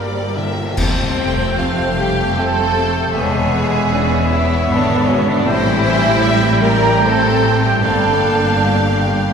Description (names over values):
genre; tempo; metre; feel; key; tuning
cinematic, emotional film score for orchestra; 76 BPM; 3/4; rubato; unclear; A4 = 442 Hz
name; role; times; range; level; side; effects
rich studio violin section; melody; 0.0-9.3 s; B4 to A5; -26 LUFS; left 3 dB; none
clear studio violin section; second line; 0.0-9.3 s; C4 to Bb5; -22 LUFS; left 1 dB; none
mellow clarinet; second line; 0.0-9.3 s; A3 to G4; -29 LUFS; equal; none
clear baby grand piano; accompaniment; 0.0-9.3 s; E2 to G4; -24 LUFS; left 2 dB; none
warm studio viola section; accompaniment; 0.0-9.3 s; G3 to Bb4; -23 LUFS; right 2 dB; none
concert harp; arpeggios; 0.0-9.3 s; E2 to G5; -26 LUFS; left 4 dB; none
rich symphonic cello section; bass; 0.0-9.3 s; E2 to G3; -22 LUFS; right 2 dB; none
warm studio double bass section; bass; 0.0-9.3 s; E1 to A1; -22 LUFS; right 2 dB; none
clear oboe; second line; 0.8-9.3 s; E5 to G5; -23 LUFS; right 1 dB; none
mellow hollow flute section; second line; 0.8-9.3 s; C5 to Bb5; -23 LUFS; right 2 dB; none
mellow French horn section; sustained chords; 0.8-9.3 s; C3 to Bb4; -24 LUFS; left 2 dB; none
clash cymbals and concert bass drum; percussion; 0.8-2.3 s; none; -24 LUFS; equal; none
room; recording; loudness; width
wet church reverb, RT60 3.0 s; minimal, uncompressed stereo recording; -13 LUFS; side -6 dB against mid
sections
0.8-9.3 A section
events
band accent 0.8-1.6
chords
0.0 Gm7; 0.8 Fadd9; 3.1 E7; 5.5 Am7; 7.8 Gm7